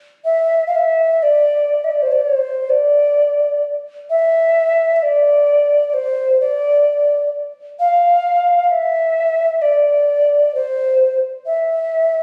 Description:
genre	caucasian folk, Caucasian lament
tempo	65 BPM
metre	4/4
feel	rubato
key	D minor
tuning	A4 = 437 Hz
part	mellow alto ocarina	solo	0.2-12.2 s	C5 to F5	-16 LUFS	equal	none
room	moderate concert hall reverb, RT60 1.7 s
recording	recorded on a phone in the room, studio reverb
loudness	-16 LUFS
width	mono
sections	0.2-12.2 A section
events	none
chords	none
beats	| 0.24 1.22 2.18 3.14 | 4.08 5.02 5.95 6.86 | 7.78 8.69 9.60 10.51 | 11.43

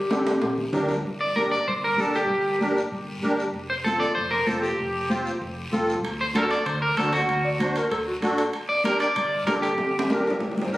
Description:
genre	latin, cumbia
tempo	192 BPM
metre	4/4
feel	straight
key	G minor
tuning	A4 = 441 Hz
part	mellow clarinet	second line	0.0-0.7, 7.4-10.8 s	F#4 to D5	-29 LUFS	left 1 dB	none
part	hollow-body short-scale fingered electric bass	bass	0.0-10.8 s	F1 to D2	-34 LUFS	equal	none
part	musette accordion	accompaniment	0.1-10.8 s	C4 to C5	-28 LUFS	equal	none
part	congas	percussion	0.1-10.6 s	none	-30 LUFS	equal	none
part	guiro	percussion	0.1-10.8 s	none	-40 LUFS	left 2 dB	none
part	timbales	percussion	0.1-1.0, 6.0-10.7 s	none	-30 LUFS	right 1 dB	none
part	electric guitar at the edge of break-up	melody	1.2-10.7 s	F#4 to D5	-24 LUFS	equal	spring reverb, tape echo
room	moderate plate reverb, RT60 2.9 s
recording	recorded on a phone in the room, studio reverb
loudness	-22 LUFS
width	side -17 dB against mid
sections	0.0-1.0 A section; 1.0-10.8 B section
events	clarinet solo 0.0-1.0; drum fill 0.1-1.0, 9.8-10.8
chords	0.0 Gm; 3.5 F; 6.0 D7; 8.5 Gm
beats	0.11 0.43 0.74 | 1.05 1.36 1.67 1.98 | 2.30 2.61 2.92 3.23 | 3.54 3.86 4.17 4.48 | 4.79 5.10 5.42 5.73 | 6.04 6.35 6.66 6.98 | 7.29 7.60 7.91 8.22 | 8.54 8.85 9.16 9.47 | 9.79 10.10 10.41 10.72

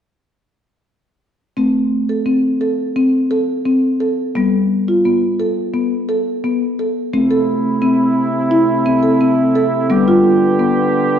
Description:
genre	world meditative, meditative tuned percussion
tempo	86 BPM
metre	4/4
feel	straight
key	A minor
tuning	A4 = 440 Hz
part	marimba with soft mallets	arpeggios	1.6-11.2 s	G3 to A4	-14 LUFS	left 1 dB	none
part	mellow brass ensemble	sustained chords	7.1-11.2 s	C3 to G4	-17 LUFS	right 3 dB	none
room	wet recital hall reverb, RT60 1.5 s, small room reverb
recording	dark, warm production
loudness	-13 LUFS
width	side -9 dB against mid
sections	1.6-7.1 A section; 7.1-11.2 B section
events	none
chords	1.6 Am; 4.4 G; 7.1 Am; 9.9 G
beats	| 1.58 2.27 2.97 3.66 | 4.36 5.05 5.75 6.44 | 7.14 7.83 8.53 9.22 | 9.91 10.60

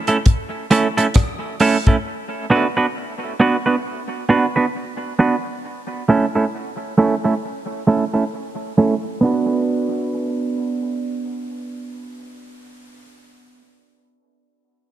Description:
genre	dub reggae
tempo	67 BPM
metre	4/4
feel	swing 59% on 16ths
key	B minor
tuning	A4 = 441 Hz
part	semi-hollow electric guitar	accompaniment	0.1-13.7 s	A3 to B4	-18 LUFS	right 3 dB	low-pass filter, dub echo
part	damped 70s drum kit	drums	0.1-2.0 s	hi-hat, kick drum, rim click	-16 LUFS	left 1 dB	none
room	light reverb, small room ambience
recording	dark, warm production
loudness	-17 LUFS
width	side -12 dB against mid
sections	0.0-9.2 A section; 9.2-12.8 B section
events	filter sweep on clean electric guitar 0.0-9.2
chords	0.0 A; 2.0 Bm; 5.6 A; 9.2 Bm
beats	0.26 1.15 | 2.05 2.95 3.84 4.74 | 5.64 6.53 7.43 8.33 | 9.22 10.12 11.02 11.91

